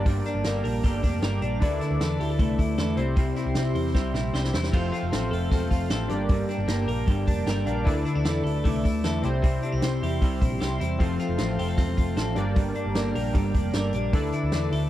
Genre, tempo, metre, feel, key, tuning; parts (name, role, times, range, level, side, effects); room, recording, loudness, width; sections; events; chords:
jangly indie pop; 153 BPM; 4/4; straight; F major; A4 = 440 Hz
electric guitar through a small old amp; accompaniment; 0.0-14.9 s; F2 to E4; -34 LUFS; right 6 dB
warm analog keys; accompaniment; 0.0-14.9 s; C4 to A5; -34 LUFS; left 1 dB; chorus
lush unison pad; sustained chords; 0.0-14.9 s; G4 to D6; -36 LUFS; equal; chorus, phaser
twelve-string electric guitar; arpeggios; 0.0-14.9 s; G2 to C5; -28 LUFS; left 2 dB; spring reverb
hollow-body short-scale picked electric bass; bass; 0.0-14.9 s; E1 to E2; -28 LUFS; equal
vintage drum kit; drums; 0.1-14.8 s; crash cymbal, hi-hat, kick drum, snare drum; -25 LUFS; equal
little or no reverb; dry, close 1970s-style studio recording; -23 LUFS; side -13 dB against mid
0.0-4.7 A section; 4.7-14.9 A section
drum fill 4.0-4.7; synth keys fill 7.1-7.9
0.0 Gm; 1.6 Dsus2; 3.0 C; 4.7 F; 6.1 Gm; 7.9 Dsus2; 9.2 C; 11.0 F; 12.4 Gm; 14.1 Dsus2